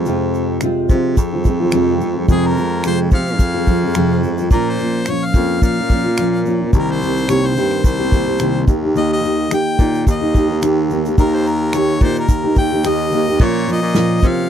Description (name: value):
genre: acoustic pop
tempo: 108 BPM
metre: 4/4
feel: swing 55% on 16ths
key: F minor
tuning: A4 = 440 Hz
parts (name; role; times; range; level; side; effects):
- nylon-string guitar; accompaniment; 0.0-14.5 s; F2 to G4; -17 LUFS; right 1 dB; double-tracked left and right
- breathy baritone saxophone; bass; 0.0-14.5 s; C2 to C3; -20 LUFS; equal; none
- unplugged drum kit; drums; 0.1-14.4 s; crash cymbal, finger snaps, kick drum, shaker, snare drum; -14 LUFS; equal; none
- clear harmonica; melody; 2.3-14.5 s; Ab4 to G5; -22 LUFS; left 3 dB; none
room: little or no reverb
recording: dry, close 1970s-style studio recording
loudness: -14 LUFS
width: side -9 dB against mid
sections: 0.0-13.4 A section; 13.4-14.5 B section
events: none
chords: 0.0 Fm; 4.5 Bbm; 6.7 Cm7; 8.7 Eb; 13.4 Bbm